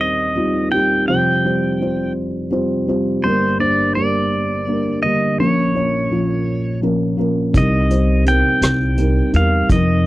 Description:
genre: acoustic folk-pop ballad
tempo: 56 BPM (dotted quarters)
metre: 6/8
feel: straight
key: unclear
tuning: A4 = 440 Hz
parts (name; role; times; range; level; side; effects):
- pedal steel guitar; melody; 0.0-10.1 s; C5 to G5; -20 LUFS; right 1 dB; none
- felt-muted upright piano; accompaniment; 0.0-10.1 s; F1 to Db5; -17 LUFS; equal; none
- upright bass; bass; 7.5-10.1 s; C2 to F2; -16 LUFS; equal; none
- vintage brush drum kit; drums; 7.5-9.9 s; hi-hat, kick drum, rim click; -18 LUFS; equal; none
room: little or no reverb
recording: dry, close 1970s-style studio recording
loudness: -15 LUFS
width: side -17 dB against mid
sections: 0.0-7.5 A section; 7.5-10.1 B section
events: none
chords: 0.0 Eb6; 1.1 Fsus2; 3.2 Gm; 5.4 Bbm; 7.5 Cm7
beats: 0.01 | 1.09 2.16 | 3.24 4.31 | 5.39 6.47 | 7.55 8.62 | 9.70

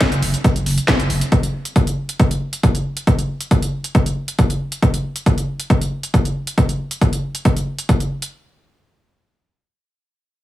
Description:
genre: driving peak-time techno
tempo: 137 BPM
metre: 4/4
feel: straight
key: unclear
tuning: A4 = 440 Hz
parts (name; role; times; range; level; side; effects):
- breakbeat sampler-style drum kit; drums; 0.0-1.3 s; hi-hat, snare drum; -31 LUFS; equal; sidechain pumping on hats, high-pass filter on hats, high-pass filter on snare, high-pass filter on room
- electronic kick drum; drums; 0.0-8.0 s; none; -16 LUFS; equal; none
- techno drum kit; drums; 0.0-8.3 s; hi-hat, snare drum; -24 LUFS; equal; sidechain pumping on hats
- saturated sub bass; bass; 0.1-1.2 s; F#1; -22 LUFS; equal; sidechain pumping, low-pass filter
room: little or no reverb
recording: small room ambience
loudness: -16 LUFS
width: side -15 dB against mid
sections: 0.0-8.3 A section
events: none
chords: none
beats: 0.01 0.44 0.88 | 1.32 1.76 2.20 2.63 | 3.07 3.51 3.95 4.39 | 4.82 5.26 5.70 6.14 | 6.58 7.01 7.45 7.89

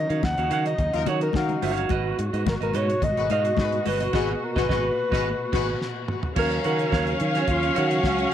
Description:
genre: disco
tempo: 108 BPM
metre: 4/4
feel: straight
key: Eb minor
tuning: A4 = 440 Hz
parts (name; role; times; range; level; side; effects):
- breathy alto saxophone; melody; 0.0-8.3 s; F4 to Gb5; -27 LUFS; left 1 dB; tape echo
- dark studio string section; sustained chords; 0.0-8.3 s; Bb2 to F5; -29 LUFS; left 1 dB; none
- fingered electric bass; bass; 0.0-8.2 s; G1 to Eb3; -28 LUFS; equal; none
- clean electric guitar; accompaniment; 0.1-8.2 s; Gb4 to Gb5; -30 LUFS; right 11 dB; none
- damped 70s drum kit; drums; 0.1-8.3 s; crash cymbal, hi-hat, kick drum, snare drum, toms; -29 LUFS; equal; none
- congas; percussion; 0.2-4.0 s; none; -33 LUFS; left 11 dB; none
- warm horn section; stabs; 0.9-5.7 s; Gb3 to F5; -33 LUFS; left 11 dB; tape echo
- clear studio string section; second line; 6.4-8.3 s; Db4 to Db5; -28 LUFS; right 1 dB; none
room: light reverb, studio reverb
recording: 1960s-style stereo with parts hard left and right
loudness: -21 LUFS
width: side -10 dB against mid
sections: 0.0-6.4 A section; 6.4-8.3 B section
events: alto saxophone solo 0.0-6.4; band accent 4.1-6.4; drum fill 5.8-6.4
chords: 0.0 Ebm9; 1.9 Abm7; 6.4 Ebm9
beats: 0.23 0.79 1.35 | 1.91 2.46 3.02 3.58 | 4.14 4.70 5.25 5.81 | 6.37 6.92 7.48 8.04

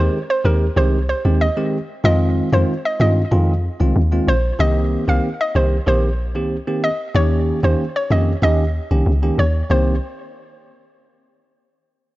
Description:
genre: afrobeats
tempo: 94 BPM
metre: 4/4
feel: straight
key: C minor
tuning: A4 = 444 Hz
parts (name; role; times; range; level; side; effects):
- hollow square pluck; melody; 0.0-10.0 s; Bb4 to F5; -22 LUFS; equal; chorus, analog delay
- bell-like tine electric piano; accompaniment; 0.0-9.9 s; Eb3 to G4; -21 LUFS; right 1 dB; phaser
- deep log drum bass; bass; 0.0-10.0 s; Bb1 to G2; -17 LUFS; equal; none
room: digital ambience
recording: dry, gritty hardware recording, nothing above 7.5 kHz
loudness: -15 LUFS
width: side -17 dB against mid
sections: 0.0-4.6 A section; 4.6-9.7 B section; 9.7-12.2 C section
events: none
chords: 0.0 Abmaj7/Eb; 2.0 Fm7; 4.6 Cm7; 7.1 Eb7; 9.7 Cm7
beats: 0.13 0.77 1.40 | 2.04 2.68 3.32 3.96 | 4.60 5.23 5.87 6.51 | 7.15 7.79 8.43 9.06 | 9.70

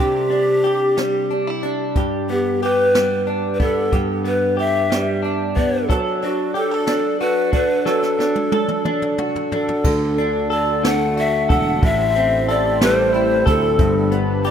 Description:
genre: six-eight pop ballad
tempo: 61 BPM (dotted quarters)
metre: 6/8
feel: straight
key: unclear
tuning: A4 = 439 Hz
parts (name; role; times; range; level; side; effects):
- breathy large pan pipes; melody; 0.0-14.5 s; F#4 to F#5; -20 LUFS; left 2 dB; digital delay
- direct-recorded clean electric guitar; accompaniment; 0.0-14.5 s; G2 to A4; -20 LUFS; right 1 dB; double-tracked left and right
- jazz brush drum kit; drums; 0.3-14.5 s; crash cymbal, hi-hat, kick drum, snare drum, toms; -21 LUFS; right 1 dB; none
- lush unison pad; sustained chords; 9.8-14.5 s; D3 to C5; -26 LUFS; equal; chorus
- sustaining fretless electric bass; bass; 9.8-14.5 s; E1 to D2; -25 LUFS; equal; none
room: moderate plate reverb, RT60 2.2 s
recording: rough home demo mix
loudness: -16 LUFS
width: side -8 dB against mid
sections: 0.0-9.8 A section; 9.8-14.5 B section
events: drum fill 7.9-9.8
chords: 0.0 Cadd9; 2.0 G; 5.9 D/F#; 9.8 D; 11.8 Am7; 13.8 Gadd9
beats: 0.97 | 1.96 2.94 | 3.92 4.91 | 5.89 6.87 | 7.86 8.85 | 9.85 10.84 | 11.83 12.81 | 13.79

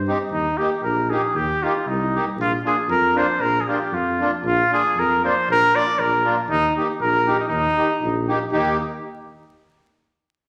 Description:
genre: alpine folk, alpine dance band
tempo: 117 BPM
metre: 2/4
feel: straight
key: Eb major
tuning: A4 = 440 Hz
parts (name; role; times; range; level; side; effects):
- warm trumpet; melody; 0.0-8.8 s; Eb4 to D5; -22 LUFS; equal; none
- mellow tuba; bass; 0.0-8.8 s; Bb1 to G2; -28 LUFS; equal; none
- accordion; accompaniment; 0.1-8.8 s; Bb3 to G4; -27 LUFS; equal; light tremolo tuning
room: wet large studio reverb, RT60 1.2 s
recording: vinyl crackle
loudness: -20 LUFS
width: mono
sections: 0.3-8.5 A section; 8.5-9.6 B section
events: none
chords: 0.3 Eb; 2.4 Bb; 6.5 Eb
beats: | 0.31 0.83 | 1.35 1.87 | 2.38 2.89 | 3.40 3.92 | 4.44 4.96 | 5.48 5.99 | 6.49 7.00 | 7.51 8.02 | 8.53

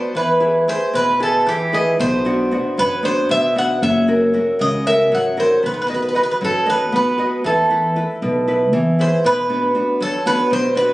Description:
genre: greek folk, Greek bouzouki band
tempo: 232 BPM (eighths)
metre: 7/8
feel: straight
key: unclear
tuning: A4 = 440 Hz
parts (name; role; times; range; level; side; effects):
- Greek bouzouki; melody; 0.0-10.9 s; G4 to F#5; -18 LUFS; equal; none
- nylon-string guitar; accompaniment; 0.0-10.9 s; B2 to D#5; -19 LUFS; equal; none
- upright bass; bass; 2.0-9.1 s; F#1 to F#2; -22 LUFS; left 1 dB; none
room: moderate plate reverb, RT60 3.0 s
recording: recorded on a phone in the room, studio ambience, nothing above 10.9 kHz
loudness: -15 LUFS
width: side -17 dB against mid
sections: 0.0-9.2 A section; 9.2-10.9 A section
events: speeding up 0.0-10.9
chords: 0.1 E; 2.0 Bm; 3.8 F#; 5.6 B; 7.4 E5; 9.2 Bm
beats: | 0.14 0.41 0.67 0.94 1.20 1.46 1.72 | 1.99 2.25 2.51 2.77 3.03 3.29 3.56 | 3.82 4.08 4.34 4.60 4.86 5.12 5.38 | 5.63 5.89 6.15 6.41 6.67 6.93 7.19 | 7.44 7.70 7.96 8.21 8.47 8.73 8.98 | 9.24 9.49 9.75 10.01 10.26 10.52 10.77

